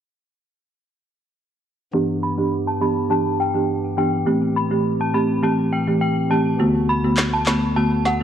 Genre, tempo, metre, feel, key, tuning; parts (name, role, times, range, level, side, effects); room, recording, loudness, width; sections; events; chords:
dancehall; 103 BPM; 4/4; straight; G major; A4 = 440 Hz
folk marimba with medium mallets; accompaniment; 1.9-8.2 s; D3 to G4; -19 LUFS; right 2 dB; low-pass filter
pipe organ, stopped flute; sustained chords; 1.9-8.2 s; D2 to G4; -26 LUFS; left 2 dB; low-pass filter
synth chime; melody; 2.2-8.2 s; F#5 to B5; -24 LUFS; left 3 dB; ensemble chorus, phaser, low-pass filter, tape echo
electronic handclaps and snare drum; drums; 7.2-8.2 s; -23 LUFS; equal; overdrive
light reverb; dark, warm production; -18 LUFS; side -9 dB against mid
1.9-8.2 A section
filter sweep 1.9-8.2
1.9 G6; 4.3 Am7; 6.6 D6